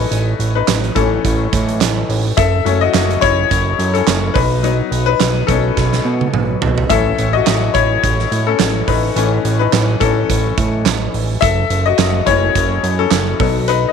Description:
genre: piano-driven pop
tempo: 106 BPM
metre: 4/4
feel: swing 56% on 16ths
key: A lydian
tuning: A4 = 441 Hz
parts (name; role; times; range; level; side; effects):
- bright upright piano; accompaniment; 0.0-13.9 s; E3 to E5; -16 LUFS; left 11 dB; none
- fat analog bass; bass; 0.0-13.9 s; F#1 to B2; -18 LUFS; right 2 dB; none
- huge arena drum kit; drums; 0.1-13.8 s; handclaps, hi-hat, kick drum, snare drum, toms; -19 LUFS; right 7 dB; none
room: light reverb, small room reverb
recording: 1960s-style stereo with parts hard left and right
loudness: -13 LUFS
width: side -6 dB against mid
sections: 0.0-13.9 A section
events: upright piano solo 0.0-13.9; drum fill 5.8-6.9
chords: 0.0 A; 2.4 F#m; 4.4 B; 6.9 A; 11.4 F#m; 13.4 B

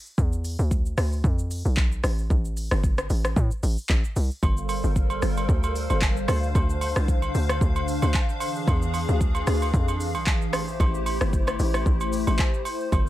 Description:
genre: amapiano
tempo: 113 BPM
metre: 4/4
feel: swing 55% on 16ths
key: unclear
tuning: A4 = 440 Hz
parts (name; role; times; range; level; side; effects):
- deep house drum kit; drums; 0.1-13.1 s; handclaps, hi-hat, kick drum, rim click, shaker; -25 LUFS; equal; none
- hollow log drum bass; bass; 0.2-13.1 s; G1 to A2; -24 LUFS; equal; none
- hollow soft pad; sustained chords; 4.4-13.1 s; D3 to F5; -29 LUFS; left 1 dB; ensemble chorus, sidechain pumping
- agogo bells and woodblock; percussion; 4.4-13.1 s; none; -32 LUFS; right 2 dB; none
room: little or no reverb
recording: none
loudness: -22 LUFS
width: side -15 dB against mid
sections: 0.0-13.1 A section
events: none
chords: 0.0 E5; 2.0 A7(no3); 4.4 Gm11; 6.3 Dm7; 8.4 E7b9; 10.5 Am7

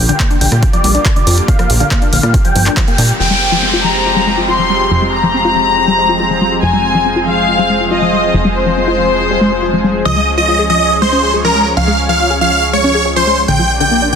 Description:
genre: uplifting trance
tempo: 140 BPM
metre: 4/4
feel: straight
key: F minor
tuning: A4 = 441 Hz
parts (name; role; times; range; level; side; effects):
- lush unison pad; sustained chords; 0.0-14.2 s; D3 to D5; -19 LUFS; right 1 dB; chorus, sidechain pumping
- plucky analog bass; bass; 0.0-14.2 s; F1 to Bb2; -18 LUFS; equal; sidechain pumping
- big supersaw lead; melody; 0.1-3.1, 10.1-14.2 s; Bb4 to G5; -14 LUFS; right 1 dB; phaser, sidechain pumping, low-pass filter, digital delay
- tight sequenced synth; arpeggios; 0.1-14.2 s; D3 to Ab4; -18 LUFS; left 3 dB; chorus, sidechain pumping, digital delay
- punchy analog drum machine; drums; 0.1-3.2 s; handclaps, hi-hat, rim click; -19 LUFS; right 1 dB; overdrive, sidechain pumping on hats, low-pass filter on hats, studio ambience, low-pass filter on snare
- electronic kick drum; drums; 0.2-2.9 s; none; -14 LUFS; equal; overdrive, studio ambience
- dark studio violin section; second line; 3.2-10.0 s; C5 to C6; -14 LUFS; left 3 dB; ping-pong delay
- downlifter; sound effects; 3.2-6.6 s; none; -18 LUFS; equal; none
room: moderate huge ambient reverb, RT60 4.0 s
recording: dense, heavily limited modern master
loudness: -10 LUFS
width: side -7 dB against mid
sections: 0.0-3.2 A section; 3.2-14.2 B section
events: filter sweep on synth arpeggio sound 0.0-3.2, 3.2-14.2; band accent 2.8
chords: 0.0 Bb6; 3.2 Fmadd9; 10.1 Db; 13.5 Bb6

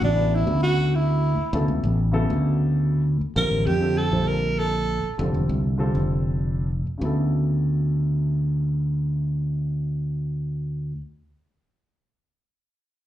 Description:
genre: electric jazz fusion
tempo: 66 BPM (dotted quarters)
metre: 6/8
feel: straight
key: D major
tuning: A4 = 440 Hz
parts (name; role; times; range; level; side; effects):
- breathy alto saxophone; melody; 0.0-5.2 s; D4 to Bb4; -24 LUFS; right 2 dB; slapback echo
- dark concert grand piano; accompaniment; 0.0-11.0 s; C#3 to C5; -28 LUFS; left 2 dB; slapback echo
- modern bright fingered electric bass; bass; 0.0-10.9 s; E1 to F2; -22 LUFS; equal; none
room: light reverb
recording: live gig heard through the venue's PA, club reverb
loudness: -21 LUFS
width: side -12 dB against mid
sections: 0.0-7.0 A section; 7.0-10.7 B section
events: alto saxophone solo 0.0-7.0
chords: 0.0 Dmaj9; 3.4 Bbmaj9; 5.2 Fadd9; 7.0 Dmaj9

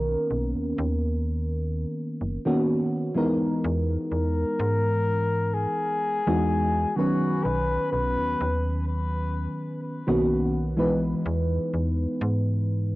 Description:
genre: vaporwave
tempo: 63 BPM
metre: 4/4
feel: straight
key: B major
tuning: A4 = 441 Hz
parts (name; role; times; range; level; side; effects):
- mellow FM electric piano; accompaniment; 0.0-13.0 s; D#3 to B4; -26 LUFS; equal; lush chorus, cassette tape, analog delay
- slap-like FM bass; bass; 0.0-13.0 s; F#1 to G#2; -27 LUFS; equal; none
- breathy flugelhorn; melody; 4.1-8.8 s; F#4 to B4; -28 LUFS; left 2 dB; tape echo
room: light reverb, small room ambience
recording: home recording on cassette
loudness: -23 LUFS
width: side -19 dB against mid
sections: 0.0-13.0 A section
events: none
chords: 0.0 Bmaj7; 3.6 Emaj7; 7.0 Bmaj7; 11.3 Emaj7

